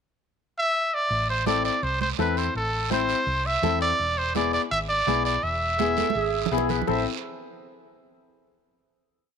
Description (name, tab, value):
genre	latin, cumbia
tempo	166 BPM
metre	4/4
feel	straight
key	A harmonic minor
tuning	A4 = 440 Hz
part	bright trumpet	melody	0.6-7.0 s	A4 to E5	-24 LUFS	right 1 dB	none
part	hollow-body short-scale fingered electric bass	bass	1.1-7.0 s	E1 to E2	-31 LUFS	right 1 dB	none
part	guiro	percussion	1.1-7.0 s	none	-36 LUFS	right 16 dB	none
part	clear upright piano	accompaniment	1.5-7.0 s	B3 to C5	-29 LUFS	left 13 dB	none
part	congas	percussion	1.5-7.0 s	none	-32 LUFS	right 16 dB	none
part	warm clarinet	second line	5.8-7.0 s	G#4 to C5	-30 LUFS	right 13 dB	none
room	moderate plate reverb, RT60 2.6 s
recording	1960s-style stereo with parts hard left and right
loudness	-22 LUFS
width	side -7 dB against mid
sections	0.0-1.1 pickup bar; 1.1-6.9 groove; 6.9-8.3 final chord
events	drum fill 6.0-6.9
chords	0.0 N.C.; 1.1 Am; 4.0 E7; 6.9 Am